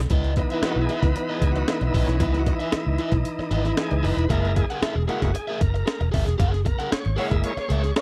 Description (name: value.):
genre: funk.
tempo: 115 BPM.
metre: 4/4.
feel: straight.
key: C# dorian.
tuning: A4 = 440 Hz.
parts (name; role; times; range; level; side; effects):
crunchy overdriven guitar; accompaniment; 0.0-8.0 s; E4 to F#5; -31 LUFS; equal; none.
vintage muted fingered electric bass; bass; 0.0-7.9 s; E1 to C#2; -26 LUFS; equal; none.
breakbeat sampler-style drum kit; drums; 0.1-8.0 s; hi-hat, kick drum, snare drum; -28 LUFS; equal; none.
bright tonewheel organ; stabs; 0.4-8.0 s; E3 to E5; -30 LUFS; equal; overdrive, fast rotary speaker, tape echo.
mellow horn section; second line; 7.2-8.0 s; A#3 to C#5; -32 LUFS; equal; none.
room: little or no reverb.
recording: dry, close 1970s-style studio recording, faint mains hum.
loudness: -23 LUFS.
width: mono.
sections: 0.1-8.0 A section.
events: tonewheel organ solo 0.1-8.0; band accent 6.4-8.0.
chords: 0.1 C#m9; 4.3 F#9.